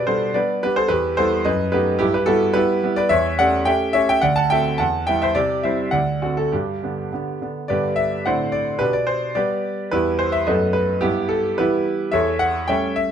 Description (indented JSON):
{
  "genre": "classical-period piano sonatina",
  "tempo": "107 BPM",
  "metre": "2/4",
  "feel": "straight",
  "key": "G major",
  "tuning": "A4 = 439 Hz",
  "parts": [
    { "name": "clear concert grand piano", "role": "solo", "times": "0.0-13.1 s", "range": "D2 to A5", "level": "-18 LUFS", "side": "equal", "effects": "none" }
  ],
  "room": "light reverb",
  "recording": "minimal, uncompressed stereo recording",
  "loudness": "-18 LUFS",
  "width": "side -8 dB against mid",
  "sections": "0.0-7.7 A section; 7.7-13.1 A section",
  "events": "none",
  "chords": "0.0 G/B; 0.9 Em; 1.5 B7/F#; 2.0 Em/G; 3.1 A7/E; 4.2 D7; 4.8 Em; 5.4 C; 5.9 D7; 6.5 G; 8.2 D7/A; 8.8 G/B; 9.9 Em; 10.5 B7/F#; 11.0 Em/G; 12.1 A7/E"
}